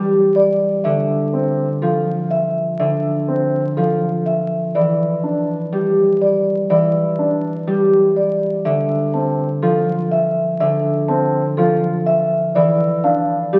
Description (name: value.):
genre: classical, minimalist pattern music.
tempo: 123 BPM.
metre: 4/4.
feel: straight.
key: F major.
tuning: A4 = 440 Hz.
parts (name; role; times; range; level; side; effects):
marimba with soft mallets; melody; 0.0-13.6 s; G4 to A5; -20 LUFS; equal; none.
concert harp; accompaniment; 0.0-13.6 s; D3 to G3; -22 LUFS; equal; none.
warm concert grand piano; arpeggios; 0.0-13.6 s; C4 to G4; -23 LUFS; equal; none.
room: wet recital hall reverb, RT60 1.7 s.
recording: very old 78 rpm record, vinyl crackle.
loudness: -18 LUFS.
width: mono.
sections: 0.0-13.6 A section.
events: none.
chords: 0.0 G5; 0.8 Fmaj7(no3); 4.7 G5; 8.6 Fmaj7; 12.6 G5.